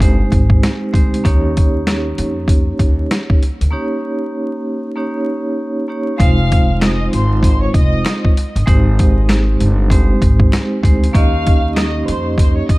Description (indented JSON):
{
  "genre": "hip hop, boom-bap hip-hop",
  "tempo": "97 BPM",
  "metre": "4/4",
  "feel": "swing 60% on 16ths",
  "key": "unclear",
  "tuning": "A4 = 439 Hz",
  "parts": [
    { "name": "vibraphone with medium hard mallets", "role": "accompaniment", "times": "0.0-12.8 s", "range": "Ab3 to Eb5", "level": "-19 LUFS", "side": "right 1 dB", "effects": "cassette tape, high-pass filter, low-pass filter" },
    { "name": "upright bass", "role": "bass", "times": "0.0-12.8 s", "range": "F1 to F2", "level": "-16 LUFS", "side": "equal", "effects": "none" },
    { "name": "boom bap sampler-style drum kit", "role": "drums", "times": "0.0-12.8 s", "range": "hi-hat, kick drum, snare drum", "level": "-14 LUFS", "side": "equal", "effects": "none" },
    { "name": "rich studio violin section", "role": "melody", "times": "6.2-12.8 s", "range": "C5 to F6", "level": "-23 LUFS", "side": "left 1 dB", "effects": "high-pass filter, low-pass filter, tape echo" },
    { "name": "finger snap", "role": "percussion", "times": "6.8-11.9 s", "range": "none", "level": "-34 LUFS", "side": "left 5 dB", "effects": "none" }
  ],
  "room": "small room ambience",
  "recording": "dark, warm production, vinyl crackle",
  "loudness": "-12 LUFS",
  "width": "side -20 dB against mid",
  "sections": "0.0-6.2 A section; 6.2-12.8 B section",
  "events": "break 3.7-6.2",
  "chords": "0.0 Abmaj7; 1.2 Eb7; 6.2 Fm7; 8.7 Abmaj7; 11.1 Eb7"
}